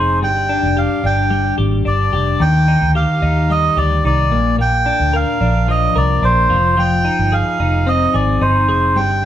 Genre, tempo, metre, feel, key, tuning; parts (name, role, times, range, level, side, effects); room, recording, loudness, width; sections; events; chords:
jangly indie pop; 110 BPM; 4/4; straight; A4 = 440 Hz
melodica; melody; 0.0-9.3 s; C5 to G5; -17 LUFS; right 1 dB
twelve-string electric guitar; arpeggios; 0.0-9.3 s; G2 to Bb4; -19 LUFS; left 3 dB; tape echo
vintage muted fingered electric bass; bass; 0.0-9.3 s; F1 to Eb2; -17 LUFS; equal
moderate studio reverb, RT60 0.7 s; band playing live in one room; -13 LUFS; side -11 dB against mid
0.0-9.3 A section
0.2 G5; 2.4 Eb; 4.3 Bb; 6.5 Fm7